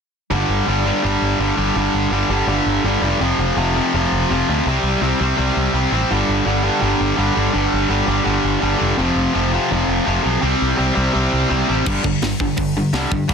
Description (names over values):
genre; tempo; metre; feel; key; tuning
punk rock; 167 BPM; 4/4; straight; unclear; A4 = 440 Hz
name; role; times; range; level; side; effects
overdriven electric guitar; riff; 0.3-13.3 s; F2 to C4; -17 LUFS; equal; none
growling picked electric bass; bass; 0.3-13.3 s; F1 to G2; -21 LUFS; equal; overdrive
tight metal drum kit; drums; 11.9-13.3 s; crash cymbal, hi-hat, kick drum, snare drum; -23 LUFS; equal; none
room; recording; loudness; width
little or no reverb; dense, heavily limited modern master; -16 LUFS; side -6 dB against mid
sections
0.3-11.9 A section; 11.9-13.3 B section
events
none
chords
0.3 G5; 3.2 F5; 4.7 C5; 6.1 G5; 9.0 F5; 10.4 C5; 11.9 G5